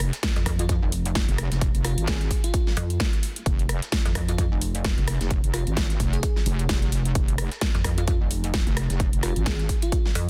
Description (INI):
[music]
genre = bass house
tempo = 130 BPM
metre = 4/4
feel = swing 57% on 16ths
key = F minor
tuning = A4 = 441 Hz
[part]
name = wobble bass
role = bass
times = 0.0-9.7 s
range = F1 to Ab1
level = -28 LUFS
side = equal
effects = chorus, tube saturation, sidechain pumping
[part]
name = big-room dance drum kit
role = drums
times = 0.0-10.3 s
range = hi-hat, rim click, snare drum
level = -33 LUFS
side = equal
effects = none
[part]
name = breakbeat sampler-style drum kit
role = drums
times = 0.0-10.3 s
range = hi-hat, snare drum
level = -42 LUFS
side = equal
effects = none
[part]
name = electronic kick drum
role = drums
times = 0.2-10.0 s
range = none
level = -26 LUFS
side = equal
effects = none
[part]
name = pulsing pluck wobble bass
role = bass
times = 0.4-5.0, 7.7-10.3 s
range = F1 to F2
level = -29 LUFS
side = equal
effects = chorus, tube saturation, sidechain pumping
[part]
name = bell-like FM electric piano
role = melody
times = 0.6-10.2 s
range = F4 to Ab4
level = -38 LUFS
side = equal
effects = chorus, tape echo
[sound]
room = digital ambience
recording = dense, heavily limited modern master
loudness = -24 LUFS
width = mono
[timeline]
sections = 0.0-10.3 A section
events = none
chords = none